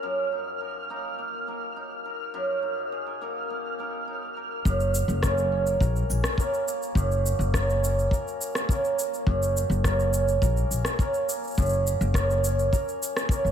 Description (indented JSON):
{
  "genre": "folktronica",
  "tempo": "104 BPM",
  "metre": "4/4",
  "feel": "straight",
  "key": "F# major",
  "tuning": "A4 = 439 Hz",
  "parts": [
    { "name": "cimbalom", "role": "arpeggios", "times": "0.0-13.5 s", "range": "F#2 to A#4", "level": "-27 LUFS", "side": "right 2 dB", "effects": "ping-pong delay" },
    { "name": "flickering grainy texture", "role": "texture", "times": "0.0-4.7 s", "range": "E#6", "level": "-35 LUFS", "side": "right 2 dB", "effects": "built-in reverb, wide subtle chorus" },
    { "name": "upright bass", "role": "bass", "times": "4.7-13.5 s", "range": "F#1 to A#1", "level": "-25 LUFS", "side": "left 1 dB", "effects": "none" },
    { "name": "electronic shaker and rim click", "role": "drums", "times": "4.7-13.5 s", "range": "none", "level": "-32 LUFS", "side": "equal", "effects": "overdrive, low-pass filter on perc, low-pass filter on snare, low-pass filter on room" },
    { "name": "kick drum", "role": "drums", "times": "4.7-13.4 s", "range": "none", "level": "-25 LUFS", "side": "left 1 dB", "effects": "none" }
  ],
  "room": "light reverb, small room ambience",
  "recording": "none",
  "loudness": "-24 LUFS",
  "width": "side -9 dB against mid",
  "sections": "0.0-4.7 A section; 4.7-13.5 B section",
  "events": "filter sweep on hammered dulcimer 0.0-4.7",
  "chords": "0.0 D#madd9/F#"
}